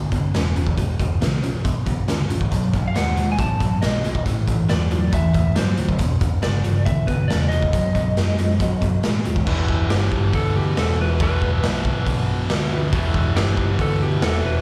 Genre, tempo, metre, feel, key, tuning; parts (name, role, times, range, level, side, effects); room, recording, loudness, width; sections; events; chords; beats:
blues rock power trio and southern rock; 138 BPM; 4/4; straight; E minor; A4 = 439 Hz
distorted electric guitar; riff; 0.0-14.6 s; E2 to G#3; -26 LUFS; equal; overdrive
hollow-body short-scale picked electric bass; bass; 0.0-14.6 s; E1 to A2; -25 LUFS; equal
raw garage drum kit; drums; 0.1-14.3 s; crash cymbal, hi-hat, kick drum, snare drum; -25 LUFS; equal
lightly driven lead guitar; melody; 2.9-14.6 s; G4 to A5; -30 LUFS; equal
overdriven tonewheel organ; sustained chords; 9.5-14.6 s; B3 to D5; -37 LUFS; equal
light reverb; live gig heard through the venue's PA, club reverb; -20 LUFS; mono
0.0-9.5 A section; 9.5-14.6 B section
lead electric guitar solo 9.5-14.6
0.0 E5; 2.5 B7; 4.3 Am; 6.0 Em; 7.7 B; 9.5 Em
0.34 | 0.77 1.21 1.65 2.08 | 2.52 2.96 3.39 3.83 | 4.26 4.70 5.13 5.57 | 6.00 6.44 6.87 7.30 | 7.74 8.17 8.61 9.04 | 9.47 9.90 10.34 10.77 | 11.20 11.63 12.06 12.50 | 12.93 13.36 13.79 14.22